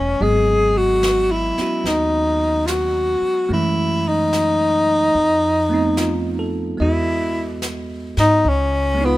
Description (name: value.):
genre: jazz.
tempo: 73 BPM.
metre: 4/4.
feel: swing 67% on 8ths.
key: unclear.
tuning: A4 = 440 Hz.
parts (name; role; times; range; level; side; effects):
breathy tenor saxophone; melody; 0.0-9.2 s; B3 to G#4; -17 LUFS; left 1 dB; none.
bell-like tine electric piano; accompaniment; 0.0-9.2 s; E3 to D#5; -24 LUFS; right 2 dB; none.
upright bass; bass; 0.0-9.2 s; E1 to G#2; -24 LUFS; equal; none.
jazz brush drum kit; drums; 0.2-9.2 s; brushed snare drum, hi-hat, snare drum; -31 LUFS; equal; none.
room: little or no reverb.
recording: minimal, uncompressed stereo recording.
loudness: -16 LUFS.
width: side -16 dB against mid.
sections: 0.0-9.2 A section.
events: none.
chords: 0.2 G#m7; 3.5 F#m7; 5.2 F7#11; 6.8 Emaj9; 8.4 C#7.